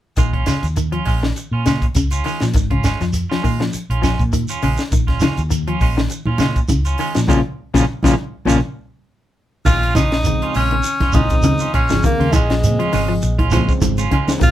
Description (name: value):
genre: afrobeat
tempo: 101 BPM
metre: 4/4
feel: swing 55% on 16ths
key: Bb minor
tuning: A4 = 440 Hz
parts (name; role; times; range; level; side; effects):
- clean electric guitar; arpeggios; 0.2-14.5 s; Bb2 to F3; -22 LUFS; left 3 dB; none
- clean electric guitar; stabs; 0.2-14.3 s; Ab3 to F4; -24 LUFS; right 6 dB; tremolo
- woody fretless electric bass; bass; 0.2-14.5 s; Ab1 to Bb2; -20 LUFS; equal; none
- tight funk drum kit; drums; 0.2-14.5 s; crash cymbal, hi-hat, kick drum, snare drum; -20 LUFS; equal; none
- shekere; percussion; 0.2-14.5 s; none; -24 LUFS; right 2 dB; none
- congas; percussion; 4.9-14.5 s; none; -24 LUFS; right 1 dB; none
- edgy tenor saxophone; melody; 9.7-14.5 s; Ab3 to F4; -20 LUFS; left 1 dB; none
- overdriven tine electric piano; accompaniment; 10.3-14.5 s; Db3 to C4; -25 LUFS; right 2 dB; none
room: light reverb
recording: band playing live in one room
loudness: -15 LUFS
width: side -12 dB against mid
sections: 0.2-9.7 A section; 9.7-14.5 B section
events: band accent 7.3-9.7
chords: 0.2 Bbm7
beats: | 0.17 0.76 1.36 1.95 | 2.54 3.14 3.73 4.33 | 4.92 5.51 6.11 6.70 | 7.29 7.89 8.48 9.08 | 9.67 10.26 10.86 11.45 | 12.04 12.63 13.23 13.82 | 14.41